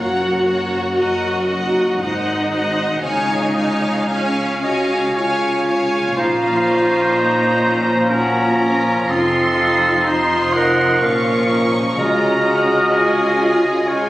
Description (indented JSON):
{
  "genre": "classical, slow romantic movement for symphony orchestra",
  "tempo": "56-64 BPM",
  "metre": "3/4",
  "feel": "rubato",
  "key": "Db major, Bb minor from 6.2 s",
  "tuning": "A4 = 440 Hz",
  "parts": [
    { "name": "rich studio violin section", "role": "melody", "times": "0.0-14.1 s", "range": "F5 to Db6", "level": "-24 LUFS", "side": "left 1 dB", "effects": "none" },
    { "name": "rich chamber violin section", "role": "second line", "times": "0.0-14.1 s", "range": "Eb4 to F5", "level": "-26 LUFS", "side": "equal", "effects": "none" },
    { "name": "rich studio viola section", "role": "accompaniment", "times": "0.0-14.1 s", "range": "Db4 to Gb4", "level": "-22 LUFS", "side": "equal", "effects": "none" },
    { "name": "concert harp", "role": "arpeggios", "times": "0.0-14.1 s", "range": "F2 to Eb5", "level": "-31 LUFS", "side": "left 2 dB", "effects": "none" },
    { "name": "rich studio cello section", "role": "bass", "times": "0.0-14.1 s", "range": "F2 to Db3", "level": "-25 LUFS", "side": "equal", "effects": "none" },
    { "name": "rich studio double bass section", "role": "bass", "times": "0.0-14.1 s", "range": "F1 to Db2", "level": "-29 LUFS", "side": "equal", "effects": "none" },
    { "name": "clear clarinet", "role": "second line", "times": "4.6-14.1 s", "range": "C4 to Bb4", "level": "-21 LUFS", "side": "equal", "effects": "none" },
    { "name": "clear oboe", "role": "second line", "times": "4.6-14.1 s", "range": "A4 to Gb5", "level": "-20 LUFS", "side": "right 1 dB", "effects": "none" },
    { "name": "concert flute", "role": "second line", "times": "6.2-14.1 s", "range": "Db6 to F6", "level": "-27 LUFS", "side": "equal", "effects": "none" },
    { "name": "warm bassoon", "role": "accompaniment", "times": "6.2-14.1 s", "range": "F3 to Ab3", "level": "-23 LUFS", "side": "right 1 dB", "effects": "none" },
    { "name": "mellow French horn section", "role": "sustained chords", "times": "6.2-14.1 s", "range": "F3 to F4", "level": "-26 LUFS", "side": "left 1 dB", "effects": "none" },
    { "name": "timpani", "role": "percussion", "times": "12.0-13.4 s", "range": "Db3", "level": "-34 LUFS", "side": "left 1 dB", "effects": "none" }
  ],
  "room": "wet recital hall reverb, RT60 1.5 s",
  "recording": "recorded on a phone in the room, studio reverb, compression",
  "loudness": "-14 LUFS",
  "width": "side -16 dB against mid",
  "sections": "0.0-6.2 A section; 6.2-14.1 B section",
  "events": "none",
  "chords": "0.0 Gb; 1.0 Ebm/Gb; 2.0 Ab7; 3.0 Db; 6.2 Bbm; 9.1 F7; 11.0 Bbm; 12.0 Db",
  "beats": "0.98 2.00 | 3.03 4.10 5.16 | 6.18 7.15 8.12 | 9.10 10.06 11.02 | 11.98 12.94 13.88"
}